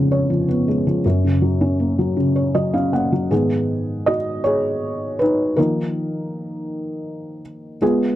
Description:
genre	pop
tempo	53 BPM (dotted quarters)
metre	6/8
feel	straight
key	Eb minor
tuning	A4 = 440 Hz
part	felt-muted upright piano	solo	0.0-8.2 s	F2 to Gb5	-18 LUFS	equal	none
room	light reverb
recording	dry, close 1970s-style studio recording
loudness	-17 LUFS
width	side -13 dB against mid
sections	0.0-3.3 A section; 3.3-8.2 B section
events	felt piano fill 2.2-3.3; felt piano solo 3.3-8.2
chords	0.0 Db7/F; 1.0 Gb; 3.3 Abm; 5.6 Ebsus2

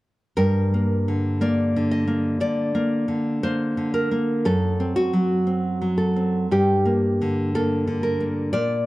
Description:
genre	romantic piece for solo classical guitar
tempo	59 BPM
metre	4/4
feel	rubato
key	G minor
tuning	A4 = 440 Hz
part	nylon-string guitar	solo	0.4-8.9 s	F#2 to Eb5	-20 LUFS	equal	none
room	moderate recital hall reverb, RT60 1.5 s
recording	dark, warm production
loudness	-20 LUFS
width	side -18 dB against mid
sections	0.4-8.9 A section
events	none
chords	0.4 Gm; 4.5 F#dim; 6.5 Gm

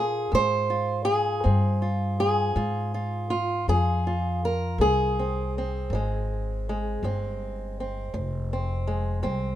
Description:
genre	acoustic country blues, solo or duo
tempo	54 BPM (dotted quarters)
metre	12/8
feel	straight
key	F minor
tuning	A4 = 442 Hz
part	fingerpicked old ladder-braced acoustic guitar	melody	0.0-9.6 s	F2 to C5	-26 LUFS	right 1 dB	none
part	upright bass	bass	0.0-9.6 s	F1 to Bb2	-27 LUFS	left 1 dB	none
room	light reverb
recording	minimal, uncompressed stereo recording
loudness	-24 LUFS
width	side -12 dB against mid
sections	0.0-9.6 A section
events	none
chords	0.0 Fm

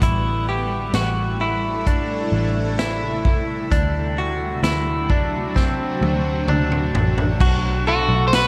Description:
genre	dream pop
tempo	65 BPM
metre	4/4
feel	straight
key	unclear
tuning	A4 = 441 Hz
part	granular cloud pad	sustained chords	0.0-8.5 s	B2 to F#5	-30 LUFS	equal	built-in reverb
part	direct-recorded clean electric guitar	arpeggios	0.0-8.5 s	C4 to A4	-26 LUFS	equal	lush chorus, dub echo
part	vintage muted picked electric bass	bass	0.0-8.5 s	A1 to D2	-26 LUFS	equal	none
part	vintage drum kit	drums	0.0-8.5 s	crash cymbal, hi-hat, kick drum, snare drum, tambourine, toms	-24 LUFS	equal	none
part	electric guitar at the edge of break-up	melody	7.9-8.5 s	F#4 to C5	-20 LUFS	equal	spring reverb, dub echo
room	light reverb, small room ambience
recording	echo-heavy mix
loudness	-21 LUFS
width	mono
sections	0.0-7.4 A section; 7.4-8.5 B section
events	drum fill 5.6-7.4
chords	0.0 Am7; 3.7 D7; 7.4 B7(no3)

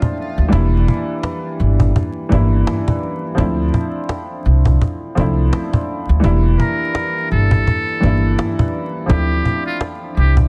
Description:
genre	hip hop, boom-bap hip-hop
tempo	84 BPM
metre	4/4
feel	swing 58% on 16ths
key	unclear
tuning	A4 = 442 Hz
part	warm upright piano	accompaniment	0.0-10.5 s	E3 to E5	-23 LUFS	equal	cassette tape, high-pass filter, low-pass filter
part	cajon	drums	0.0-10.5 s	none	-21 LUFS	equal	vintage 12-bit sampler grit
part	upright bass	bass	0.4-10.5 s	E1 to D2	-17 LUFS	equal	none
part	trumpet with metal mute	melody	6.6-10.4 s	F4 to Bb4	-26 LUFS	equal	high-pass filter, low-pass filter, tape echo
room	studio ambience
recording	dense, heavily limited modern master, vinyl crackle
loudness	-17 LUFS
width	mono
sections	0.0-10.5 A section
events	none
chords	0.0 Dm7; 0.5 Em7b5; 3.4 Dm7; 6.2 Em7b5; 9.1 Dm7

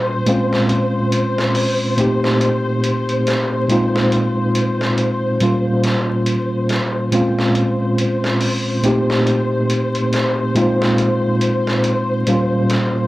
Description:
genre	trip hop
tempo	70 BPM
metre	4/4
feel	swing 59% on 16ths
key	Bb dorian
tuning	A4 = 440 Hz
part	tine electric piano	accompaniment	0.0-13.1 s	Bb2 to G4	-16 LUFS	equal	medium stereo tremolo, tape echo
part	muted studio string section	sustained chords	0.0-13.1 s	C5	-22 LUFS	left 1 dB	vintage 12-bit sampler grit
part	trip hop sampler-style drum kit	drums	0.3-12.9 s	hi-hat, snare drum	-25 LUFS	equal	high-pass filter on hats, high-pass filter on snare, high-pass filter on room
room	light reverb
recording	dry, gritty hardware recording, transformer saturation, vinyl crackle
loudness	-15 LUFS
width	side -17 dB against mid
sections	0.0-13.1 A section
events	none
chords	0.3 Bbm7; 2.0 Am7b5; 3.7 Bb9sus4; 5.4 Bbm69; 7.1 Bbm7; 8.8 Am7b5; 10.6 Bb9sus4; 12.3 Bbm69

